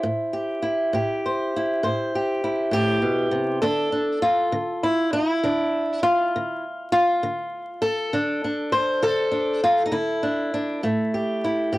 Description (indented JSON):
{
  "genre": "acoustic country blues, solo or duo",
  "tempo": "67 BPM (dotted quarters)",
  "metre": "12/8",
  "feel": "straight",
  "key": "A minor",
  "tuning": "A4 = 440 Hz",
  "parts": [
    { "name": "fingerpicked swing-style acoustic guitar", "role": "solo", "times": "0.0-11.8 s", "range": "A2 to C5", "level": "-21 LUFS", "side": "equal", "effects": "cassette tape" }
  ],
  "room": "moderate booth ambience, RT60 0.2 s",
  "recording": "home recording on cassette, vinyl crackle",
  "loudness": "-21 LUFS",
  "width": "side -18 dB against mid",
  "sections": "0.0-11.8 A section",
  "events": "none",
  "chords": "0.0 Am7; 3.6 N.C.; 10.8 A7(no3)",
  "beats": "| 0.02 0.92 1.82 2.72 | 3.62 4.52 5.42 6.33 | 7.23 8.13 9.03 9.94 | 10.84 11.74"
}